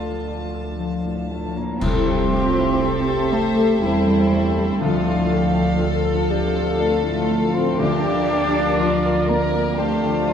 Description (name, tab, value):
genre	cinematic, emotional film score for orchestra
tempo	60 BPM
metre	3/4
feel	rubato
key	unclear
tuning	A4 = 444 Hz
part	warm studio violin section	melody	0.0-10.3 s	E4 to A5	-27 LUFS	left 5 dB	none
part	rich studio violin section	second line	0.0-10.3 s	F4 to F5	-30 LUFS	left 2 dB	none
part	dark studio viola section	accompaniment	0.0-10.3 s	D3 to A4	-29 LUFS	right 2 dB	none
part	warm baby grand piano	accompaniment	0.0-10.3 s	C2 to E5	-27 LUFS	left 1 dB	none
part	concert harp	arpeggios	0.0-10.3 s	C3 to F5	-28 LUFS	left 6 dB	none
part	dark studio cello section	bass	0.0-10.3 s	F3 to D4	-23 LUFS	right 2 dB	none
part	rich studio double bass section	bass	0.0-10.3 s	C2 to E2	-27 LUFS	right 4 dB	none
part	mellow hollow silver concert flute	second line	0.8-10.3 s	F5 to D6	-30 LUFS	left 2 dB	none
part	mellow French horn section	sustained chords	1.8-10.3 s	F4 to D5	-27 LUFS	left 2 dB	none
part	clash cymbals and concert bass drum	percussion	1.8-3.8 s	none	-30 LUFS	equal	none
room	wet concert hall reverb, RT60 1.8 s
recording	dark, warm production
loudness	-17 LUFS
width	side -8 dB against mid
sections	0.0-1.8 A section; 1.8-10.3 A section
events	band accent 1.8-2.8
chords	0.0 Dm; 1.8 C6; 4.8 Dm; 7.8 Bb/D